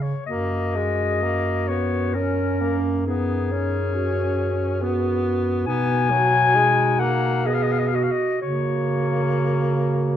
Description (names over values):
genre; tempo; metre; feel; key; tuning
classical, lyrical piece for single-reed quartet; 60-71 BPM; 3/4; rubato; F# major; A4 = 441 Hz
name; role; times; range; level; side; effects
clear clarinet; melody; 0.0-10.2 s; G#4 to G#5; -24 LUFS; left 6 dB; none
mellow bass clarinet; bass; 0.0-10.2 s; F#2 to C#3; -24 LUFS; right 1 dB; none
mellow clarinet; second line; 0.3-10.2 s; C#4 to G#4; -27 LUFS; right 6 dB; none
warm tenor saxophone; accompaniment; 0.3-10.2 s; F#3 to C#4; -26 LUFS; left 4 dB; none
room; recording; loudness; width
moderate recital hall reverb, RT60 1.5 s; dark, warm production; -19 LUFS; side -10 dB against mid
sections
0.3-10.2 A section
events
none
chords
0.3 F#; 3.1 G#m7/F#; 5.7 B; 8.4 F#/C#